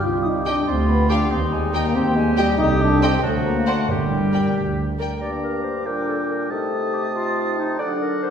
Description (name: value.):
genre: quick classical-period movement for symphony orchestra.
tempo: 93 BPM (dotted quarters).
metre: 6/8.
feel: straight.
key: G minor.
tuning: A4 = 440 Hz.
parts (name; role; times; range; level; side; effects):
mellow clarinet; second line; 0.0-8.3 s; Eb4 to D5; -29 LUFS; left 1 dB; none.
silver concert flute; second line; 0.0-8.3 s; G5 to Eb6; -30 LUFS; left 1 dB; none.
mellow bassoon; accompaniment; 0.0-8.3 s; G2 to G3; -29 LUFS; equal; none.
mellow French horn section; sustained chords; 0.0-8.3 s; F#3 to F4; -24 LUFS; left 1 dB; none.
dark studio cello section; bass; 0.0-5.1 s; C2 to G2; -25 LUFS; equal; none.
warm symphonic double bass section; bass; 0.0-5.1 s; G1 to Eb2; -25 LUFS; right 2 dB; none.
dark studio violin section; melody; 0.5-5.1 s; F#5 to G5; -30 LUFS; left 2 dB; none.
dark studio violin section; second line; 0.5-5.1 s; D5 to F5; -35 LUFS; left 1 dB; none.
dark studio viola section; accompaniment; 0.5-5.1 s; G4 to C5; -31 LUFS; right 2 dB; none.
warm oboe; second line; 0.7-8.3 s; Eb4 to Bb5; -30 LUFS; right 1 dB; none.
timpani; percussion; 3.9-4.5 s; G2; -32 LUFS; right 2 dB; none.
room: wet recital hall reverb, RT60 1.6 s.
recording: recorded in a church or concert hall.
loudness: -18 LUFS.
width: side -7 dB against mid.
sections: 0.0-5.2 A section; 5.2-8.3 B section.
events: none.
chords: 0.0 Cm; 0.7 G5/D; 1.3 Abmaj9/Eb; 2.6 Am7b5/C; 3.2 D7; 3.9 Gm; 5.9 Gm/Bb; 6.5 Adim/C; 7.8 D.